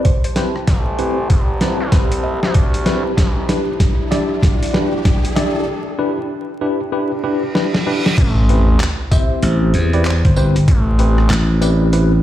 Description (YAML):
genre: glitch hop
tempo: 96 BPM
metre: 4/4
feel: swing 62% on 16ths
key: A minor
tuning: A4 = 440 Hz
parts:
  - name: woody wave-folded pluck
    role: melody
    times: 0.0-11.8 s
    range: C5 to E5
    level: -29 LUFS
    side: equal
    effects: chorus, cassette tape, dub echo
  - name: tine electric piano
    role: stabs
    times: 0.0-12.1 s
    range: C4 to D5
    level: -21 LUFS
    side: left 1 dB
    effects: medium stereo tremolo, sidechain pumping, low-pass filter, dub echo
  - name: boom bap sampler-style drum kit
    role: drums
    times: 0.0-12.1 s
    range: crash cymbal, handclaps, hi-hat, rim click, snare drum, tambourine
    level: -22 LUFS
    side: equal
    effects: studio reverb
  - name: riser, reverse cymbal and sub drop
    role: sound effects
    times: 0.0-10.7 s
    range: none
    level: -27 LUFS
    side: equal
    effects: none
  - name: deep dark ambient pad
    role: texture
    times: 0.0-5.7 s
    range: E4 to A5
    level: -26 LUFS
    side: equal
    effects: chorus, built-in reverb, sidechain pumping
  - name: electronic kick drum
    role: drums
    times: 0.1-10.8 s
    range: none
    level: -14 LUFS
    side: equal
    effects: studio reverb
  - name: gritty driven synth bass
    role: bass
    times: 0.7-3.5, 8.2-11.3 s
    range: E1 to D2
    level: -17 LUFS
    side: equal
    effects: distortion, overdrive, high-pass filter
  - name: glassy slap bass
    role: bass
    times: 9.4-12.2 s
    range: G1 to E2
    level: -13 LUFS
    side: equal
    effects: none
room: light reverb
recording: played on a big sound system in a bare room, large studio reverb, vinyl crackle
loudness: -14 LUFS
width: side -12 dB against mid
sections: 0.0-8.2 A section; 8.2-12.2 B section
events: build-up 0.0-8.2; drum fill 0.0-5.7, 7.6-8.2; riser 0.0-5.7; break 5.7-8.2; reverse cymbal 7.4-8.2; drop 8.2-12.2; impact 8.2-10.7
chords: 0.0 Am7; 3.2 Em7; 8.2 Am7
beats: 0.05 | 0.68 1.30 1.93 2.55 | 3.18 3.80 4.43 5.05 | 5.68 6.30 6.93 7.55 | 8.18 8.80 9.43 10.05 | 10.68 11.30 11.93